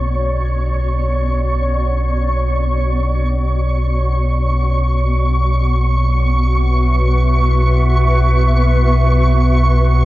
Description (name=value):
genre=dark ambient drone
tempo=free time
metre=none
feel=none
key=B minor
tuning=A4 = 442 Hz
part: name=granular cloud pad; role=sustained chords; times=0.0-10.1 s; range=B3 to E5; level=-22 LUFS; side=equal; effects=built-in reverb
part: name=gamelan-type bossed gongs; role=arpeggios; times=0.0-4.9 s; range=none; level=barely audible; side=none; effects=none
part: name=deep rumbling drone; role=drone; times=0.0-10.1 s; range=B1 to B2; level=-14 LUFS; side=equal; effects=built-in reverb, lush chorus
part: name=flickering grainy texture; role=texture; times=0.0-10.1 s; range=C#6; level=-22 LUFS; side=right 1 dB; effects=built-in reverb
room=moderate huge ambient reverb, RT60 8.5 s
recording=worn, warbling old tape, cassette tape, warbly pitch drift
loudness=-13 LUFS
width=side -16 dB against mid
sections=0.0-10.1 A section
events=fade-in on ambient pad 0.0-10.1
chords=0.0 Bm